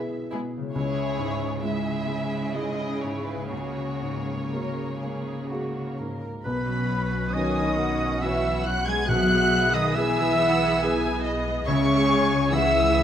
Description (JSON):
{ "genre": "cinematic, emotional film score for orchestra", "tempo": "60-70 BPM", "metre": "3/4", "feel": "rubato", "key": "B major", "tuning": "A4 = 440 Hz", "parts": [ { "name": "muted studio violin section", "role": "melody", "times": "0.0-13.0 s", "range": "B4 to G#6", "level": "-30 LUFS", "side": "equal", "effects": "none" }, { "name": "felt-muted upright piano", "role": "accompaniment", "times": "0.0-13.0 s", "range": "B1 to B4", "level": "-31 LUFS", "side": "right 1 dB", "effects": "none" }, { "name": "concert harp", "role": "arpeggios", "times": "0.0-13.0 s", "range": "B2 to C#6", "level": "-34 LUFS", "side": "left 8 dB", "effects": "none" }, { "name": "muted studio violin section", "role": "second line", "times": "0.3-13.0 s", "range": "E4 to G#5", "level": "-34 LUFS", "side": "left 1 dB", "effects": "none" }, { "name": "muted studio viola section", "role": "accompaniment", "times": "0.3-13.0 s", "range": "G#3 to G#4", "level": "-34 LUFS", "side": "equal", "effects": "none" }, { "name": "muted studio cello section", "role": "bass", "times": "0.3-13.0 s", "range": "B2 to G#3", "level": "-31 LUFS", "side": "right 3 dB", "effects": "none" }, { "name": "mellow hollow small flute group", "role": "second line", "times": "6.4-13.0 s", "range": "B4 to G#5", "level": "-30 LUFS", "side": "equal", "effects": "none" }, { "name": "muted studio double bass section", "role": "bass", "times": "6.4-13.0 s", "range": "B1 to C#2", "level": "-31 LUFS", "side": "right 2 dB", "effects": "none" }, { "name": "clear oboe", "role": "second line", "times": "6.5-13.0 s", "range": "B4 to G#5", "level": "-29 LUFS", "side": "right 1 dB", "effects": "none" }, { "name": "mellow clarinet", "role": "second line", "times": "6.5-13.0 s", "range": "B4 to G#5", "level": "-32 LUFS", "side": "left 1 dB", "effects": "none" }, { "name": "mellow French horn section", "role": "sustained chords", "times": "6.5-13.0 s", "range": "B3 to G#4", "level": "-29 LUFS", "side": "left 3 dB", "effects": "none" }, { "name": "timpani", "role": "percussion", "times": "9.1-10.3 s", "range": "B2", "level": "-32 LUFS", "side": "equal", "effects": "none" } ], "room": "moderate recital hall reverb, RT60 1.6 s", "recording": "none", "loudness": "-22 LUFS", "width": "side -9 dB against mid", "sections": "0.0-6.4 A section; 6.4-13.0 A section", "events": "none", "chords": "0.0 E/B; 0.8 C#m; 3.5 F#add9/C#; 6.4 Bsus2; 9.1 E/B; 11.7 C#m", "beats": "| 0.75 1.63 2.54 | 3.52 4.52 5.50 | 6.45 7.34 8.21 | 9.09 9.95 10.81 | 11.67 12.54" }